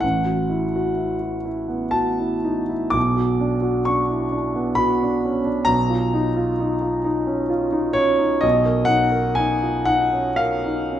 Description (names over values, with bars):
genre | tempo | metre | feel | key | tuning
classical, impressionist solo piano | 57-66 BPM | 3/4 | rubato | unclear | A4 = 437 Hz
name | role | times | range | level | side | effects
warm concert grand piano | solo | 0.0-11.0 s | A1 to D6 | -18 LUFS | equal | none
room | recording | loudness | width
moderate scoring stage reverb, RT60 1.9 s | none | -18 LUFS | side -11 dB against mid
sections
0.0-11.0 A section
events
none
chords
0.0 F#m7/A; 3.0 Bm; 5.7 D#sus2/B; 8.4 Bmaj9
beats
| 0.03 0.99 1.95 | 2.96 3.88 4.79 | 5.71 6.62 7.53 | 8.44 9.39 10.41